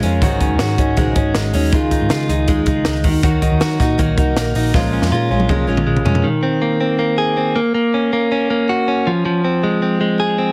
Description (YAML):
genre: jangly indie pop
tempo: 160 BPM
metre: 4/4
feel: straight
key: Ab mixolydian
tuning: A4 = 440 Hz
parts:
  - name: fingerpicked steel-string acoustic guitar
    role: accompaniment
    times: 0.0-6.3 s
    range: Ab2 to Bb4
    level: -23 LUFS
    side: equal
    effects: none
  - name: direct-recorded clean electric guitar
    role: arpeggios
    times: 0.0-10.5 s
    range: Eb3 to Ab4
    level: -19 LUFS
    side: equal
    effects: none
  - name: vintage muted picked electric bass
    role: bass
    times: 0.0-6.2 s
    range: Ab1 to Eb3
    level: -22 LUFS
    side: equal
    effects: none
  - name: compact cocktail drum kit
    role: drums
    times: 0.0-6.2 s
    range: hi-hat, kick drum, snare drum, toms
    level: -21 LUFS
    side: equal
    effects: none
room: light reverb, small room ambience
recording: heavily compressed radio sound, multiband compression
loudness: -17 LUFS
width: mono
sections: 0.0-6.2 A section; 6.2-10.5 B section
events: drum fill 4.7-6.2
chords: 0.2 Ab7sus4; 1.7 Dbadd9; 3.0 Ebm; 4.7 Bbm7; 6.2 Abadd9; 7.6 Bbm; 9.1 Fm